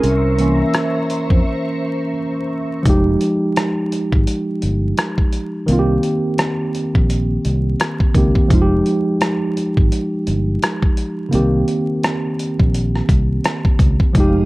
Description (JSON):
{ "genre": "lo-fi hip hop", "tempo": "85 BPM", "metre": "4/4", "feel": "swing 59% on 16ths", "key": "F minor", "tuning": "A4 = 440 Hz", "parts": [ { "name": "mellow tine electric piano", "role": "accompaniment", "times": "0.0-14.5 s", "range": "Db3 to Bb4", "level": "-18 LUFS", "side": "right 1 dB", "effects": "slow stereo tremolo, cassette tape, low-pass filter" }, { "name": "ensemble organ-string", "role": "sustained chords", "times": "0.0-2.8, 14.1-14.5 s", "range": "Ab3 to Eb6", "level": "-26 LUFS", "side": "equal", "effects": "phaser, ensemble chorus, low-pass filter" }, { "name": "fingered electric bass", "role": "bass", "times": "0.0-14.4 s", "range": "F1 to F2", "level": "-18 LUFS", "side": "equal", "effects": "none" }, { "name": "dusty soul sampler-style drum kit", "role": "drums", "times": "0.0-14.3 s", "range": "hi-hat, kick drum, rim click", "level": "-17 LUFS", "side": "equal", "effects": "none" } ], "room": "digital ambience", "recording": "vinyl crackle", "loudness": "-15 LUFS", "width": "side -20 dB against mid", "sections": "0.0-2.9 A section; 2.9-14.5 B section", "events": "tine electric piano solo 0.0-2.9; break 1.4-2.9", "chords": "0.0 C7b9; 2.9 Fm9; 5.7 Cm7; 8.5 Fm9; 11.3 Cm7" }